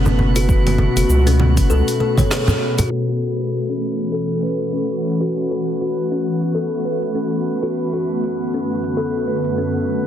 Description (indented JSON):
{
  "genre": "organic downtempo",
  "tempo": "99 BPM",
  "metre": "4/4",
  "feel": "swing 58% on 16ths",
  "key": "F# minor",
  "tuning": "A4 = 440 Hz",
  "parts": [
    { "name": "ethereal airy pad", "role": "sustained chords", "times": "0.0-10.1 s", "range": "F#2 to F#4", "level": "-22 LUFS", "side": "equal", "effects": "ensemble chorus, built-in reverb, sidechain pumping" },
    { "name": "kalimba", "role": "arpeggios", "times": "0.0-10.0 s", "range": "C#4 to C#5", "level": "-22 LUFS", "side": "left 1 dB", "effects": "low-pass filter, tape echo" },
    { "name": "round analog bass", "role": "bass", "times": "0.0-1.8 s", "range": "F#1 to C#2", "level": "-16 LUFS", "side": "equal", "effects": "sidechain pumping" },
    { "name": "drifting glass-harmonics texture", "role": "texture", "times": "0.0-10.1 s", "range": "B4", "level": "-32 LUFS", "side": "right 7 dB", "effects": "chorus, built-in reverb" },
    { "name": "deep house drum kit", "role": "drums", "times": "0.1-9.9 s", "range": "congas, hi-hat, shaker, snare drum", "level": "-23 LUFS", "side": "right 2 dB", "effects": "studio reverb" },
    { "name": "congas", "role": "percussion", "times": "0.1-2.9 s", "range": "none", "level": "-20 LUFS", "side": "equal", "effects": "none" },
    { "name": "electronic kick drum", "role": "drums", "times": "0.5-2.3 s", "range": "none", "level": "-18 LUFS", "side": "equal", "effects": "studio reverb" }
  ],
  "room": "moderate lush hall reverb, RT60 2.2 s",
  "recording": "dense, heavily limited modern master, low-pass filter",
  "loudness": "-16 LUFS",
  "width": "side -10 dB against mid",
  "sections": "0.0-2.9 A section; 2.9-10.1 B section",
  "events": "kick drops out 2.3-2.9; band accent 2.3-2.6",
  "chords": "0.0 B5/F#; 2.9 F#m7; 7.8 Bm7/F#",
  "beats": "| 0.49 1.09 1.70 2.31 | 2.91 3.52 4.12 4.73 | 5.33 5.94 6.55 7.15 | 7.76 8.37 8.97 9.58"
}